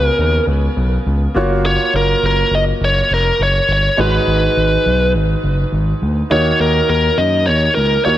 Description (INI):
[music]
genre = 1980s-style pop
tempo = 103 BPM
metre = 4/4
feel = swing 55% on 16ths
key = F# major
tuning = A4 = 443 Hz
[part]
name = biting lead guitar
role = melody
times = 0.0-8.2 s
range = A#4 to D#5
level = -16 LUFS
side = equal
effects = overdrive, digital delay
[part]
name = clear grand piano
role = accompaniment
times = 0.0-8.2 s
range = G#2 to C#5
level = -20 LUFS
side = right 1 dB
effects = none
[part]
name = smooth gliding synth bass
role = bass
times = 0.0-8.2 s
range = E#1 to F#2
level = -16 LUFS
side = equal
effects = none
[sound]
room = moderate lush hall reverb, RT60 2.5 s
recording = none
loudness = -13 LUFS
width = side -13 dB against mid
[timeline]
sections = 0.0-8.2 A section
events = none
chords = 0.0 C#7sus4; 1.4 F#maj7; 4.0 G#m7; 6.3 D#m7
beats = 0.48 1.06 | 1.65 2.23 2.81 3.40 | 3.98 4.56 5.14 5.73 | 6.31 6.89 7.47 8.06